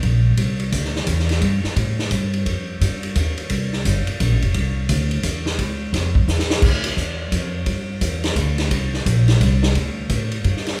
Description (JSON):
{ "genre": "jazz, small-group swing and bop", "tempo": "173 BPM", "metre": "3/4", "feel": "swing 63% on 8ths", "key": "C mixolydian", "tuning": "A4 = 440 Hz", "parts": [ { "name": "upright bass", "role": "bass", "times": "0.0-10.8 s", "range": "F1 to A2", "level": "-22 LUFS", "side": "equal", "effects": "none" }, { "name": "swinging big-band drum kit", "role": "drums", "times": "0.0-10.8 s", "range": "crash cymbal, hi-hat, kick drum, ride cymbal, snare drum", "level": "-25 LUFS", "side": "equal", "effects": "none" } ], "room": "moderate recital hall reverb, RT60 1.6 s", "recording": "recorded in a church or concert hall", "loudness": "-20 LUFS", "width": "mono", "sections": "0.0-10.8 A section", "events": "drum fill 6.3-6.6", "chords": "none", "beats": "0.03 | 0.38 0.73 1.08 | 1.42 1.77 2.12 | 2.47 2.81 3.16 | 3.51 3.85 4.20 | 4.55 4.89 5.24 | 5.59 5.94 6.28 | 6.63 6.98 7.33 | 7.67 8.02 8.37 | 8.72 9.06 9.41 | 9.76 10.11 10.45" }